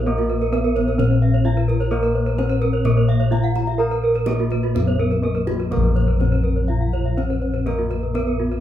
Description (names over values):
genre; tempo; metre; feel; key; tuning
Balinese gamelan; 126 BPM; 4/4; straight; Bb pelog; A4 = 438 Hz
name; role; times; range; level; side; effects
gamelan-type bronze metallophone; melody; 0.0-8.6 s; Bb3 to Bb4; -25 LUFS; right 1 dB; none
gamelan-type bronze metallophone; arpeggios; 0.0-8.6 s; Gb4-40c to Gb5-40c; -28 LUFS; right 5 dB; none
gamelan-type bossed gongs; bass; 0.0-8.6 s; Bb1 to Bb4; -19 LUFS; left 1 dB; none
gamelan-type bronze metallophone; arpeggios; 0.1-8.5 s; Gb4-40c to Bb5; -27 LUFS; left 1 dB; none
kendang; percussion; 0.2-8.6 s; none; -34 LUFS; right 3 dB; none
room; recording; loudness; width
moderate studio reverb, RT60 0.6 s; band playing live in one room; -17 LUFS; side -11 dB against mid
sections
0.0-5.7 A section; 5.7-8.6 B section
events
none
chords
none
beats
| 0.07 0.54 1.00 1.46 | 1.92 2.39 2.85 3.32 | 3.80 4.27 4.75 5.23 | 5.72 6.21 6.69 7.18 | 7.67 8.15